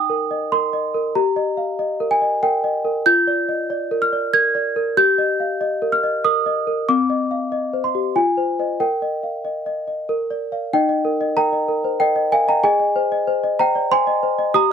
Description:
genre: classical, lullaby for celesta.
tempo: 94 BPM.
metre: 3/4.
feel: straight.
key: Eb major.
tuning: A4 = 436 Hz.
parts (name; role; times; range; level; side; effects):
small celesta; solo; 0.0-14.7 s; C4 to Ab6; -17 LUFS; equal; none.
room: light reverb.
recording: none.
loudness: -17 LUFS.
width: side -7 dB against mid.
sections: 0.0-10.7 A section; 10.7-14.7 B section.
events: none.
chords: 0.0 Eb; 1.2 Eb/G; 3.1 Bb7/F; 5.0 Eb/G; 6.9 Cm; 8.2 Fm7; 8.8 Eb/Bb; 10.1 Bb; 10.7 Eb; 12.6 Ab.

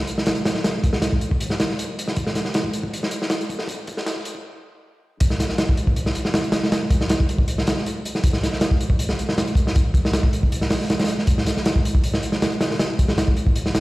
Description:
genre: drum and bass.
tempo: 158 BPM.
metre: 4/4.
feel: straight.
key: none.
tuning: none.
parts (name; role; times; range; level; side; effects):
crunchy breakbeat drum kit; drums; 0.1-13.8 s; hi-hat, kick drum, snare drum; -19 LUFS; equal; none.
room: moderate lush hall reverb, RT60 2.1 s.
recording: played on a big sound system in a bare room, large studio reverb, high-pass filter.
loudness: -19 LUFS.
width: side -19 dB against mid.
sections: 0.0-5.2 A section; 5.2-13.8 B section.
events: build-up 0.0-5.2; filter sweep 0.0-5.2; stop 4.4-5.2; drop 5.2-13.8.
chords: none.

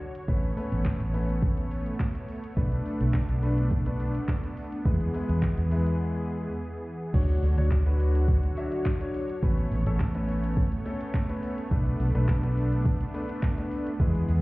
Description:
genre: dance-pop.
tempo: 105 BPM.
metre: 4/4.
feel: straight.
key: B dorian.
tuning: A4 = 441 Hz.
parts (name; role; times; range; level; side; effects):
soft supersaw; sustained chords; 0.0-14.4 s; D3 to C#5; -35 LUFS; right 1 dB; sidechain pumping.
smooth R&B drum kit; drums; 0.0-14.4 s; crash cymbal, handclaps, hi-hat, kick drum, shaker; -26 LUFS; equal; none.
warm concert grand piano; accompaniment; 0.3-14.3 s; F#3 to E5; -34 LUFS; left 2 dB; sidechain pumping.
vintage muted fingered electric bass; bass; 0.3-14.4 s; A1 to E2; -26 LUFS; equal; sidechain pumping.
room: little or no reverb.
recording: heard muffled through a wall, stone room reverb, EQ.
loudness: -25 LUFS.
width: side -21 dB against mid.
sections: 0.0-7.1 A section; 7.1-14.4 B section.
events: break 6.0-7.1.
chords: 0.3 Aadd9; 2.6 Bm7; 4.9 E; 7.1 Dmaj7; 9.4 Aadd9; 11.7 Bm7.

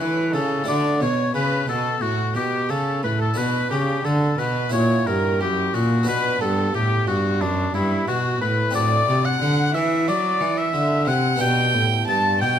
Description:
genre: classical, baroque-style sonata movement with continuo.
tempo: 90 BPM.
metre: 4/4.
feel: rubato.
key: unclear.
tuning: A4 = 440 Hz.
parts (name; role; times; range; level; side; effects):
clear oboe; melody; 0.0-12.6 s; D4 to A5; -24 LUFS; left 7 dB; none.
warm violin; second line; 0.0-12.6 s; D4 to A5; -26 LUFS; right 7 dB; none.
harpsichord; accompaniment; 0.0-12.6 s; F#2 to A4; -26 LUFS; equal; none.
rich cello; bass; 0.0-12.6 s; F#2 to F#3; -23 LUFS; right 1 dB; none.
room: moderate recital hall reverb, RT60 1.7 s.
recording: close, detailed microphones.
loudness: -18 LUFS.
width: side -9 dB against mid.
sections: 0.0-12.6 A section.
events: none.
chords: 0.0 A; 0.7 D; 3.4 Bm; 4.7 F#7; 6.1 Bm; 8.7 D7/A; 11.4 G.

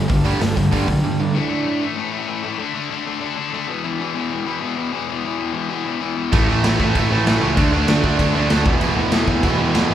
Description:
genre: punk rock.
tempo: 193 BPM.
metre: 4/4.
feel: straight.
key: unclear.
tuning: A4 = 440 Hz.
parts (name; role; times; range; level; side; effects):
distorted electric guitar; riff; 0.0-9.9 s; E2 to D4; -22 LUFS; left 6 dB; distortion.
fuzz guitar; riff; 0.0-1.8, 6.3-9.9 s; E2 to D4; -24 LUFS; right 1 dB; distortion.
overdriven semi-hollow guitar; riff; 0.0-1.3, 6.3-9.9 s; E2 to D4; -21 LUFS; right 6 dB; none.
picked electric bass; bass; 0.0-1.0, 6.3-9.9 s; E1 to D2; -23 LUFS; equal; none.
raw garage drum kit; drums; 0.1-1.0, 6.3-9.8 s; crash cymbal, hi-hat, kick drum, snare drum; -20 LUFS; equal; none.
room: light reverb.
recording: band playing live in one room.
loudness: -17 LUFS.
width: side -10 dB against mid.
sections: 0.0-1.3 A section; 1.3-9.9 B section.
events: break 1.0-1.3.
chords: 0.0 G5; 1.3 A5; 2.6 D5; 3.7 E5; 6.3 A5; 7.6 D5; 8.7 E5.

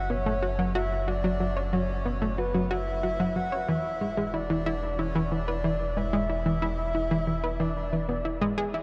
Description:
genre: ambient, sequencer-driven space music.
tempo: 92 BPM.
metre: 4/4.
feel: straight.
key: unclear.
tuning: A4 = 437 Hz.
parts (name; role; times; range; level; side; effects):
breathy flute-like synth lead; melody; 0.0-8.3 s; B4 to F#5; -34 LUFS; equal; subtle chorus, tape echo.
warm sub bass; bass; 0.0-8.8 s; E1 to F#1; -35 LUFS; equal; tube saturation.
analog pluck; riff; 0.1-8.8 s; E3 to C#5; -31 LUFS; equal; chorus, tape echo.
room: moderate huge ambient reverb, RT60 9.7 s.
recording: dark, warm production.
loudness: -28 LUFS.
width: mono.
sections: 0.0-8.8 A section.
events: none.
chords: 0.0 F#7(no3); 3.7 E7.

